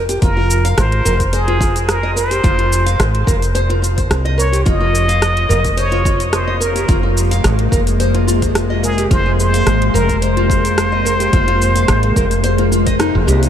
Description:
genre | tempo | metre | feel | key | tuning
organic downtempo | 108 BPM | 4/4 | swing 54% on 16ths | F minor | A4 = 441 Hz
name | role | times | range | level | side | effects
nylon-string guitar | arpeggios | 0.0-13.4 s | Eb4 to F5 | -21 LUFS | equal | diffuse ambient delay
woody fretless electric bass | bass | 0.0-13.5 s | F1 to C2 | -16 LUFS | equal | sidechain pumping
deep house drum kit | drums | 0.1-13.5 s | cabasa, hi-hat, rim click | -23 LUFS | equal | overdrive
trumpet with plunger mute | melody | 0.2-13.0 s | Ab4 to Eb5 | -20 LUFS | equal | diffuse ambient delay
electronic kick drum | drums | 0.2-13.0 s | none | -19 LUFS | equal | overdrive
bowed-like drone | sustained chords | 5.5-13.5 s | C3 to Bb3 | -20 LUFS | left 2 dB | built-in reverb, sidechain pumping
room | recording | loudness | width
moderate huge ambient reverb, RT60 8.7 s | dreamy mix soaked in reverb | -12 LUFS | side -9 dB against mid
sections
0.0-13.5 A section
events
band accent 13.0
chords
0.0 Fm

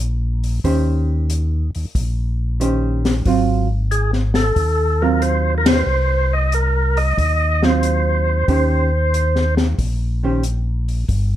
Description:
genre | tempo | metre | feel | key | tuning
soul jazz organ trio | 92 BPM | 4/4 | swing 68% on 8ths | Eb mixolydian | A4 = 440 Hz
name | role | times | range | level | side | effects
mellow tonewheel organ | bass | 0.0-11.4 s | G1 to Eb2 | -18 LUFS | equal | slow rotary speaker
open jazz drum kit | drums | 0.4-11.3 s | hi-hat, kick drum, ride cymbal, snare drum | -21 LUFS | left 2 dB | none
vintage hollow-body jazz guitar | accompaniment | 0.6-10.4 s | Eb3 to C5 | -21 LUFS | right 4 dB | none
percussive tonewheel organ | melody | 3.9-9.5 s | Ab4 to Eb5 | -20 LUFS | equal | slow rotary speaker
room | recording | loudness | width
light reverb | dark, warm production | -16 LUFS | side -12 dB against mid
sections
0.0-11.4 A section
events
band accent 5.5-5.9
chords
0.0 Eb6; 3.3 Ab6; 8.5 Eb6

